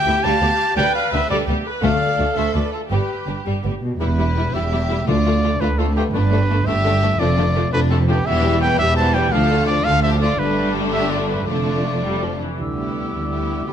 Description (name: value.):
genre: cinematic.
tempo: 113 BPM (dotted quarters).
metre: 6/8.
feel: straight.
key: unclear.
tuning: A4 = 438 Hz.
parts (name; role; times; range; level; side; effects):
warm symphonic violin section; melody; 0.0-13.7 s; B3 to F5; -28 LUFS; left 4 dB; none.
rich symphonic viola section; accompaniment; 0.0-13.7 s; D3 to B4; -25 LUFS; equal; none.
warm trumpet; stabs; 0.0-12.4 s; G4 to A5; -22 LUFS; equal; none.
timpani; percussion; 0.0-2.3, 5.1-5.6 s; D3; -27 LUFS; left 4 dB; none.
warm symphonic violin section; second line; 0.1-13.7 s; G3 to F4; -27 LUFS; left 4 dB; none.
dark symphonic cello section; bass; 0.1-13.7 s; D2 to D3; -23 LUFS; right 1 dB; none.
warm symphonic double bass section; bass; 0.1-13.7 s; E1 to D2; -23 LUFS; right 2 dB; none.
mellow hollow silver concert flute; second line; 12.6-13.7 s; B5 to E6; -32 LUFS; left 4 dB; none.
warm cor anglais; second line; 12.6-13.7 s; G4; -32 LUFS; right 3 dB; none.
dark French horn section; sustained chords; 12.6-13.7 s; G3 to G4; -29 LUFS; left 6 dB; none.
room: moderate scoring stage reverb, RT60 1.7 s.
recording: none.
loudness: -16 LUFS.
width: side -9 dB against mid.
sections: 0.0-4.0 A section; 4.0-12.6 B section; 12.6-13.7 C section.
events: none.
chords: 0.0 Em/D; 0.8 G; 1.8 Dm; 2.9 G; 4.0 Em; 5.1 Dm; 6.1 Gadd9; 7.2 Dm/F; 8.3 Em; 9.3 Dm; 10.4 Gadd9; 11.5 Dm/F; 12.6 Em/D.